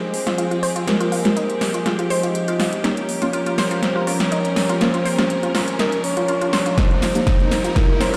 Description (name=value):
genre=progressive house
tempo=122 BPM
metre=4/4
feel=straight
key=unclear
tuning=A4 = 443 Hz
part: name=soft octave-layered synth lead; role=melody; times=0.0-8.2 s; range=Ab4 to Eb5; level=-27 LUFS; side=equal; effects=chorus, vintage 12-bit sampler grit, sidechain pumping
part: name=bright studio string section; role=sustained chords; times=0.0-8.2 s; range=F3 to Bb4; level=-27 LUFS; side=equal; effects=sidechain pumping
part: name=deep mellow chord stab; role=stabs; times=0.0-8.2 s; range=Ab3 to F5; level=-27 LUFS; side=equal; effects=chorus, sidechain pumping, digital delay
part: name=riser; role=sound effects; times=2.8-8.2 s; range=none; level=-34 LUFS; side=equal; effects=none
part: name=deep house drum kit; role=drums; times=0.1-8.2 s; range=hi-hat, shaker, snare drum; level=-26 LUFS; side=equal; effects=none
part: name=analog pluck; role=arpeggios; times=0.3-8.2 s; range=Eb4 to C5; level=-28 LUFS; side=equal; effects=chorus, sidechain pumping, digital delay
part: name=tight sequencer bass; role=bass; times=0.3-8.2 s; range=none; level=barely audible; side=none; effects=none
part: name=electronic kick drum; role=drums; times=6.8-7.9 s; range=none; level=-20 LUFS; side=equal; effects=none
room=moderate lush hall reverb, RT60 2.1 s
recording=played on a big sound system in a bare room, stone room reverb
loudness=-20 LUFS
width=mono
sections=0.0-8.2 A section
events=build-up 0.0-8.2; drum fill 0.0-8.2; filter sweep on synth arpeggio sound 0.0-8.2; filter sweep on synth stab 0.0-8.2; filter sweep on soft synth lead 0.0-8.2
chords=0.0 Fmadd9; 2.8 Gdim/F; 6.8 Eb/F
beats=0.38 | 0.88 1.37 1.86 2.35 | 2.84 3.33 3.83 4.32 | 4.81 5.30 5.79 6.29 | 6.78 7.27 7.76